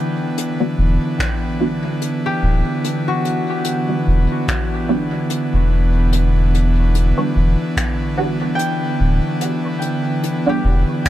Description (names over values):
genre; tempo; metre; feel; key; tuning
ambient dub; 73 BPM; 4/4; swing 56% on 16ths; E minor; A4 = 440 Hz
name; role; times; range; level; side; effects
airy breathy pad; sustained chords; 0.0-11.1 s; D3 to B3; -20 LUFS; equal; chorus
concert harp; arpeggios; 0.0-11.1 s; F#4 to G5; -27 LUFS; left 1 dB; dub echo
jazz brush drum kit; drums; 0.4-11.1 s; finger snaps, hi-hat; -27 LUFS; left 2 dB; dub echo
filtered dub chord stab; stabs; 0.6-10.6 s; G3 to F#4; -24 LUFS; right 2 dB; phaser, ensemble chorus, dub echo
soft dub sub bass; bass; 0.8-10.8 s; D1 to E1; -15 LUFS; equal; none
electronic kick drum; drums; 1.2-11.1 s; none; -23 LUFS; equal; none
room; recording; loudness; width
studio reverb; none; -16 LUFS; side -13 dB against mid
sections
0.0-11.1 A section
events
none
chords
0.0 Em7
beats
0.37 1.19 2.01 | 2.83 3.66 4.48 5.30 | 6.12 6.95 7.77 8.59 | 9.41 10.23 11.05